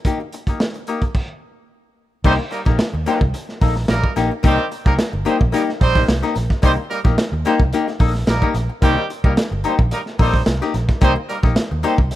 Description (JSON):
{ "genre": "funk", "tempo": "109 BPM", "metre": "4/4", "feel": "straight", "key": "C minor", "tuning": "A4 = 439 Hz", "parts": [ { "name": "crunchy breakbeat drum kit", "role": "drums", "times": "0.0-12.2 s", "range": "crash cymbal, hi-hat, kick drum, snare drum", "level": "-18 LUFS", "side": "right 1 dB", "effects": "none" }, { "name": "archtop guitar, miked and amplified", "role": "accompaniment", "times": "0.1-12.2 s", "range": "Bb3 to A4", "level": "-22 LUFS", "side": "left 5 dB", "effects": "wah" }, { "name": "clear horn section", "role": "second line", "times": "2.2-11.9 s", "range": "Eb3 to C5", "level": "-23 LUFS", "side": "right 3 dB", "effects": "none" }, { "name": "vintage muted fingered electric bass", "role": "bass", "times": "2.2-12.1 s", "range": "G1 to Eb2", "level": "-20 LUFS", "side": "equal", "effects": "none" } ], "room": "small room ambience", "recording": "rough home demo mix", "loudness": "-16 LUFS", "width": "side -14 dB against mid", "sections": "0.0-2.2 A section; 2.2-12.2 B section", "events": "stop 1.1-2.2", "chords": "0.0 Eb/Bb; 2.2 Cm7" }